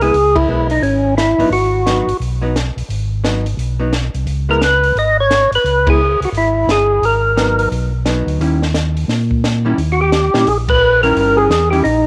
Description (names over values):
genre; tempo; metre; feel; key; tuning
soul jazz organ trio; 174 BPM; 4/4; swing 63% on 8ths; G# minor; A4 = 438 Hz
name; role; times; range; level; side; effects
percussive tonewheel organ; melody; 0.0-2.2, 4.5-7.7, 9.9-12.1 s; C#4 to D#5; -16 LUFS; equal; slow rotary speaker, overdrive, cassette tape
archtop guitar, miked and amplified; accompaniment; 0.0-11.8 s; D#3 to E4; -23 LUFS; equal; cassette tape
mellow tonewheel organ; bass; 0.0-12.1 s; G1 to A#2; -20 LUFS; equal; overdrive, chorus vibrato, slow rotary speaker
compact cocktail drum kit; drums; 0.0-11.9 s; hi-hat, kick drum, ride cymbal, snare drum; -24 LUFS; equal; cassette tape
room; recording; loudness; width
light reverb, small room reverb; home recording on cassette; -15 LUFS; mono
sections
0.0-12.1 A section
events
band accent 0.3, 5.8, 10.6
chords
0.1 C#m7; 1.5 G#m7; 4.3 C#m7; 7.0 G#m7; 8.4 D#7b9